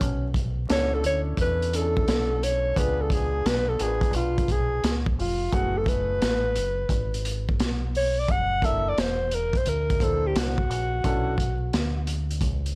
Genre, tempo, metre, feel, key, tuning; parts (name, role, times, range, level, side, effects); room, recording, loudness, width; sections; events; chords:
hip hop, jazz-hop; 87 BPM; 4/4; swing 66% on 16ths; F# minor; A4 = 441 Hz
breathy alto saxophone; melody; 0.0-12.1 s; C#4 to F#5; -26 LUFS; equal
deep dub fingered electric bass; bass; 0.0-12.8 s; E1 to E2; -28 LUFS; equal
crunchy breakbeat drum kit; drums; 0.0-12.8 s; hi-hat, kick drum, snare drum; -27 LUFS; equal
dark baby grand piano; accompaniment; 0.7-11.3 s; A3 to B#4; -33 LUFS; equal
small room ambience; dry, gritty hardware recording, vinyl crackle, faint mains hum; -22 LUFS; side -28 dB against mid
0.0-12.8 A section
alto saxophone solo 0.0-12.8
0.0 Bm11; 2.8 C#7b9; 5.5 F#m11; 8.3 F#7b13; 11.0 Bm11